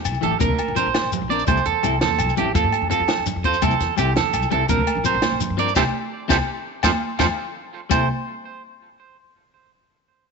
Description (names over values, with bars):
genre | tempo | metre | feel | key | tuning
highlife guitar band | 112 BPM (dotted quarters) | 12/8 | straight | C mixolydian | A4 = 440 Hz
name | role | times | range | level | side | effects
upright bass | bass | 0.0-8.1 s | A1 to A2 | -26 LUFS | left 1 dB | none
compact cocktail drum kit | drums | 0.0-8.0 s | hi-hat, kick drum, ride cymbal, snare drum | -25 LUFS | left 1 dB | none
agogo bells | percussion | 0.1-8.0 s | none | -29 LUFS | left 13 dB | none
congas | percussion | 0.1-8.1 s | none | -30 LUFS | right 10 dB | none
shekere | percussion | 0.1-8.1 s | none | -30 LUFS | left 8 dB | none
clean electric guitar | accompaniment | 0.2-8.1 s | E3 to Bb4 | -26 LUFS | left 16 dB | none
electric guitar at the edge of break-up | arpeggios | 0.2-8.1 s | F4 to D5 | -22 LUFS | right 10 dB | tape echo
room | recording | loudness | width
moderate echo chamber reverb, RT60 1.8 s | 1960s-style stereo with parts hard left and right, nothing above 7.9 kHz | -18 LUFS | side -4 dB against mid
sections
0.0-7.9 A section; 7.9-10.0 B section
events
band accent 5.8-7.9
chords
0.4 Bbadd9; 1.5 C6; 2.6 F; 3.6 C6; 4.7 Bbadd9; 5.8 C; 6.8 F; 7.9 N.C.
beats
0.40 0.94 | 1.48 2.02 2.55 3.09 | 3.63 4.16 4.70 5.23 | 5.77 6.30 6.84 7.37 | 7.91